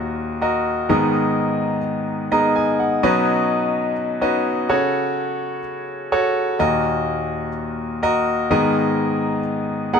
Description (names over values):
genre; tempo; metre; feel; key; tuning
pop; 126 BPM; 4/4; straight; unclear; A4 = 439 Hz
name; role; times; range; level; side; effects
clear concert grand piano; solo; 0.0-10.0 s; D#2 to A#5; -18 LUFS; equal; none
room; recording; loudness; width
moderate small room reverb, RT60 0.5 s; band playing live in one room; -18 LUFS; side -6 dB against mid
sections
0.0-10.0 A section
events
grand piano fill 2.1-3.0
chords
0.0 D#m; 0.9 G#madd9; 3.0 Badd9; 4.7 F#m/C#; 6.6 D#m; 8.5 G#madd9